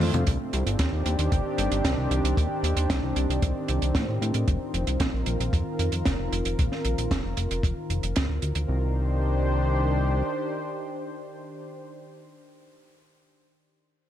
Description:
synthwave; 114 BPM; 4/4; straight; C minor; A4 = 439 Hz
lush unison pad; sustained chords; 0.0-11.7 s; D3 to C5; -30 LUFS; left 1 dB; chorus, sidechain pumping
fat analog bass; bass; 0.0-10.2 s; F1 to A2; -26 LUFS; equal
compact cocktail drum kit; drums; 0.0-8.7 s; cabasa, hi-hat, snare drum, toms; -30 LUFS; right 2 dB
kick drum; drums; 0.3-8.3 s; -27 LUFS; equal
light reverb, studio ambience; -24 LUFS; side -11 dB against mid
0.3-8.7 A section; 8.7-12.9 B section
drum fill 0.0; filter sweep on analog synth bass 0.3-8.7; filter sweep on analog synth pad 0.3-8.7
0.3 Cmadd9; 4.5 F7sus4; 8.7 Cmadd9

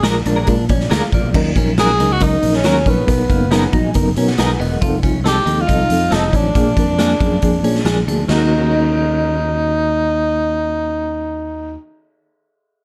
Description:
uptempo 1960s-style soul; 138 BPM; 4/4; straight; Eb minor; A4 = 439 Hz
breathy tenor saxophone; melody; 0.0-11.8 s; Cb4 to Ab4; -21 LUFS; equal
mellow reed electric piano; accompaniment; 0.0-11.8 s; Eb3 to A#5; -23 LUFS; equal; fast tremolo
clean electric guitar; stabs; 0.0-11.8 s; Bb3 to Bb4; -27 LUFS; equal; tremolo
fingered electric bass; bass; 0.0-11.8 s; Fb1 to B2; -22 LUFS; equal
raw garage drum kit; drums; 0.0-8.4 s; crash cymbal, hi-hat, kick drum, snare drum; -22 LUFS; equal
clean electric guitar; riff; 0.3-9.6 s; Bb3 to F4; -28 LUFS; equal; phaser
moderate large studio reverb, RT60 1.0 s, small room ambience; dark, warm production; -16 LUFS; mono
0.0-1.3 A section; 1.3-8.3 B section; 8.3-11.8 C section
reed electric piano fill 3.5-4.8
0.0 Bb7; 1.3 Ebm7; 3.1 Bmaj7; 4.8 F7; 6.6 Bb7; 8.3 Ebm7

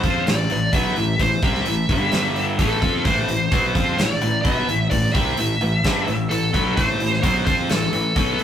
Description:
hard rock; 129 BPM; 4/4; straight; A minor; A4 = 440 Hz
dark smooth lead guitar; melody; 0.0-8.4 s; A4 to E5; -22 LUFS; equal; overdrive
tight distorted guitar; riff; 0.0-8.4 s; G2 to F4; -22 LUFS; left 1 dB; distortion
fuzz fingered electric bass; bass; 0.0-8.4 s; G1 to F2; -26 LUFS; equal; overdrive
gated 80s drum kit; drums; 0.0-8.4 s; hi-hat, kick drum, snare drum; -23 LUFS; equal
moderate studio reverb, RT60 0.6 s; rough rehearsal-room recording, tube saturation; -17 LUFS; side -9 dB against mid
0.0-8.4 A section
0.0 Am; 1.9 G5; 2.6 Am

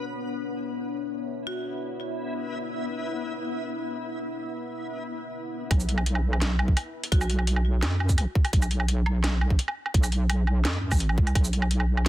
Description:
half-time drum and bass; 170 BPM; 4/4; half-time; B minor; A4 = 435 Hz
deep dark ambient pad; sustained chords; 0.0-5.7 s; B3 to E5; -35 LUFS; left 2 dB; chorus, built-in reverb, sidechain pumping
backwards swelling texture; texture; 0.0-5.7 s; B3 to E4; -34 LUFS; left 2 dB; built-in reverb
marimba with hard mallets; melody; 1.5-1.8, 7.1-7.5 s; F#4; -37 LUFS; equal; digital delay
deep soft wobble bass; bass; 5.7-12.1 s; A1 to F#2; -24 LUFS; equal; chorus
drum and bass drum kit; drums; 5.7-12.1 s; hi-hat, shaker, snare drum, woodblock; -29 LUFS; right 1 dB
electronic kick drum; drums; 5.7-11.4 s; -22 LUFS; equal
digital ambience; dense, heavily limited modern master; -24 LUFS; side -14 dB against mid
0.0-5.7 A section; 5.7-12.1 B section
drop 5.7-12.1
0.0 Bmadd9; 5.7 N.C.

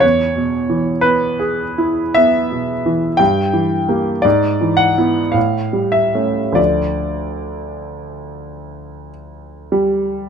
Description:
classical, romantic nocturne for solo piano; 44-60 BPM; 3/4; rubato; D minor from 3.2 s; A4 = 440 Hz
clear concert grand piano; solo; 0.0-10.3 s; D2 to G5; -15 LUFS; equal
light reverb; minimal, uncompressed stereo recording; -14 LUFS; side -7 dB against mid
0.0-10.3 A section
0.0 E; 3.2 Edim/G; 4.2 E7/G#; 5.4 A7; 6.6 Dm

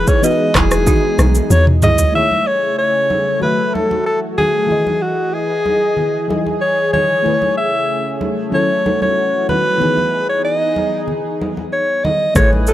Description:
afrobeats; 94 BPM; 4/4; straight; A4 = 440 Hz
breathy alto saxophone; melody; 0.0-12.7 s; F#4 to E5; -16 LUFS; equal; tape echo
mellow FM electric piano; accompaniment; 0.0-12.7 s; E3 to E5; -23 LUFS; left 3 dB; chorus, tremolo
lush unison pad; sustained chords; 0.0-12.3 s; C#3 to D#5; -24 LUFS; right 1 dB; chorus
deep log drum bass; bass; 0.0-2.0, 12.4-12.7 s; E1 to E2; -14 LUFS; equal
balafon; riff; 0.1-1.9, 12.4-12.7 s; D#4 to C#5; -24 LUFS; right 6 dB
afro-pop drum kit; drums; 0.1-2.1, 12.4-12.7 s; handclaps, kick drum, rim click, shaker, toms; -16 LUFS; equal
congas; percussion; 0.6-12.7 s; -24 LUFS; right 2 dB
mellow horn section; second line; 12.4-12.7 s; E4 to G#5; -25 LUFS; left 2 dB
little or no reverb; dry, gritty hardware recording; -13 LUFS; side -13 dB against mid
0.0-2.1 A section; 2.1-12.4 B section
drum fill 1.5-2.1
0.0 Emaj7; 2.1 Amaj7; 3.4 F#m7; 4.7 Emaj7; 7.3 Amaj7; 8.5 F#m7; 9.8 Emaj7

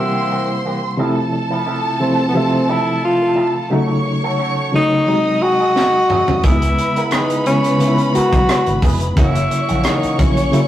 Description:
lush 1970s-style soul; 88 BPM; 4/4; swing 54% on 16ths; A4 = 441 Hz
breathy tenor saxophone; melody; 0.0-10.7 s; B3 to F#4; -17 LUFS; equal; analog delay
warm studio violin section; second line; 0.0-10.7 s; A4 to D#6; -23 LUFS; right 1 dB
bright reed electric piano; accompaniment; 0.0-10.7 s; C3 to F#5; -19 LUFS; equal; overdrive, fast tremolo
electric guitar with an envelope filter; riff; 0.0-10.6 s; E3 to B4; -26 LUFS; right 2 dB; spring reverb
tight funk drum kit; drums; 5.8-10.7 s; hi-hat, kick drum, rim click, snare drum, toms; -19 LUFS; equal
vintage muted fingered electric bass; bass; 6.4-10.5 s; E#1 to C#2; -21 LUFS; equal
wet studio reverb, RT60 0.6 s; rough rehearsal-room recording, warm saturation, vinyl crackle; -14 LUFS; side -12 dB against mid
0.0-10.7 A section
drum fill 5.8-6.4
0.0 C7; 1.0 Fmaj7; 3.7 D#m7b5; 5.1 G#7; 6.4 C#m7; 9.2 F#7

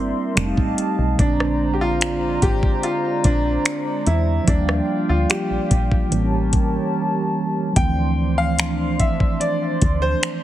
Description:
contemporary R&B; 73 BPM; 4/4; straight; D minor; A4 = 438 Hz
warm grand piano; melody; 0.0-10.4 s; C4 to G5; -24 LUFS; equal; ping-pong delay
mellow tine electric piano; accompaniment; 0.0-10.4 s; D3 to E4; -24 LUFS; right 2 dB; medium stereo tremolo
hollow soft pad; sustained chords; 0.0-10.4 s; Ab3 to C6; -27 LUFS; equal; chorus
woody FM bass; bass; 0.0-10.1 s; F1 to E2; -22 LUFS; equal
smooth R&B drum kit; drums; 0.4-10.4 s; finger snaps, hi-hat, kick drum, rim click; -20 LUFS; equal; vintage 12-bit sampler grit
light reverb; heavily compressed radio sound, multiband compression; -17 LUFS; side -13 dB against mid
0.0-7.8 A section; 7.8-10.4 B section
break 6.9-7.8
0.4 F9; 1.2 Bb9; 4.5 Ebmaj9; 6.1 A7b9; 7.8 Dm9

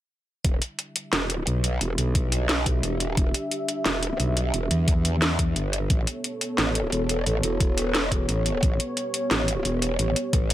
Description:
dark technical drum and bass; 176 BPM; 4/4; straight; E dorian; A4 = 438 Hz
dark analog pad; sustained chords; 0.4-10.5 s; B3 to E5; -30 LUFS; equal; chorus, sidechain pumping
growl bass; bass; 0.4-10.5 s; E1 to E2; -25 LUFS; equal; chorus, tube saturation, sidechain pumping
drum and bass drum kit; drums; 0.4-10.5 s; hi-hat, snare drum; -26 LUFS; equal
electronic kick drum; drums; 0.4-10.4 s; -23 LUFS; equal; overdrive
light reverb; -22 LUFS; side -13 dB against mid
0.4-10.5 A section
0.4 Em7; 5.9 Aadd9

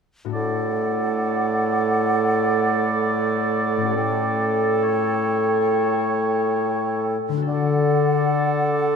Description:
classical, slow romantic movement for symphony orchestra; 68 BPM; 4/4; rubato; D major; A4 = 440 Hz
concert harp; arpeggios; 0.2-9.0 s; A2 to A4; -27 LUFS; left 9 dB
bright clarinet; second line; 0.3-9.0 s; A4; -27 LUFS; left 1 dB
mellow hollow silver concert flute; second line; 0.3-9.0 s; F#5 to G5; -26 LUFS; equal
warm oboe; second line; 0.3-9.0 s; C#5 to D5; -27 LUFS; right 2 dB
mellow bassoon; accompaniment; 0.3-9.0 s; A2 to D3; -22 LUFS; right 2 dB
wet concert hall reverb, RT60 2.5 s; -19 LUFS; side -6 dB against mid
0.3-9.0 A section
0.3 D/A; 7.5 D

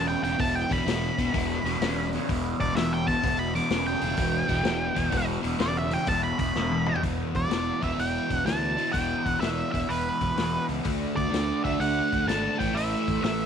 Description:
blues rock power trio and southern rock; 126 BPM; 4/4; swing 66% on 8ths; E minor; A4 = 438 Hz
octave-fuzz lead guitar; melody; 0.0-13.5 s; B4 to D6; -29 LUFS; right 1 dB; distortion
raw garage guitar; riff; 0.0-13.5 s; E2 to D4; -28 LUFS; equal; overdrive, phaser
fuzz fingered electric bass; bass; 0.0-13.4 s; E1 to D2; -32 LUFS; right 1 dB; overdrive
vintage drum kit; drums; 0.2-13.4 s; hi-hat, kick drum, snare drum, toms; -32 LUFS; left 3 dB
light reverb; 1960s-style stereo; -24 LUFS; side -7 dB against mid
0.0-7.0 A section; 7.0-13.5 B section
lead electric guitar solo 0.0-7.0; drum fill 6.6-7.0
0.0 Em; 10.9 D; 12.5 A5

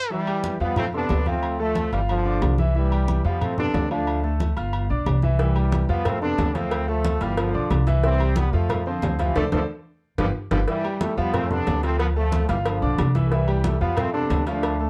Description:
latin, salsa; 182 BPM; 4/4; straight; A4 = 440 Hz
bright trombone section; melody; 0.1-14.9 s; C3 to D4; -29 LUFS; equal
clear grand piano; accompaniment; 0.1-14.9 s; C3 to F6; -30 LUFS; equal
congas; percussion; 0.1-14.9 s; -32 LUFS; equal
agogo bells and timbales; percussion; 0.3-14.8 s; -36 LUFS; equal
upright bass; bass; 0.6-14.9 s; G1 to F2; -26 LUFS; equal
cowbell; percussion; 5.4-14.8 s; -34 LUFS; equal
light reverb; dark, warm production; -23 LUFS; mono
0.1-10.7 A section; 10.7-14.9 A section
band accent 9.4-10.7; drum fill 9.9-10.7
0.1 Em; 0.8 F; 1.4 Dm; 2.1 G5; 2.8 C; 3.4 F; 4.1 Dm; 4.7 G7; 5.4 C; 6.1 F; 6.7 Dm; 7.4 G7; 8.0 C; 8.7 F5; 9.4 Dm7; 10.0 G7; 10.7 Fmaj9#11; 11.3 F; 12.0 Dm; 12.7 G7; 13.3 C; 14.0 F

